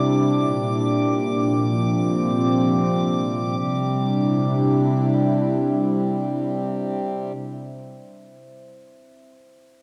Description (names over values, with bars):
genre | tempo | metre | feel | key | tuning
ambient | 74 BPM | 4/4 | straight | C mixolydian | A4 = 440 Hz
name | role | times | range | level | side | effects
warm analog pad | sustained chords | 0.0-7.6 s | Bb2 to E4 | -23 LUFS | equal | chorus
muted felt-like synth keys | arpeggios | 0.0-9.3 s | C5 to E5 | -46 LUFS | equal | none
pedal harmonium | drone | 0.0-7.3 s | C3 to G3 | -29 LUFS | equal | none
drifting glass-harmonics texture | texture | 0.0-3.6 s | D6 | -33 LUFS | equal | chorus, built-in reverb
room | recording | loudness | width
wet concert hall reverb, RT60 2.4 s | dark, warm production | -21 LUFS | mono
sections
0.0-3.6 A section; 3.6-6.8 B section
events
none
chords
0.3 Bb; 3.6 C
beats
| 0.31 1.12 1.94 2.75 | 3.56 4.37 5.18 5.99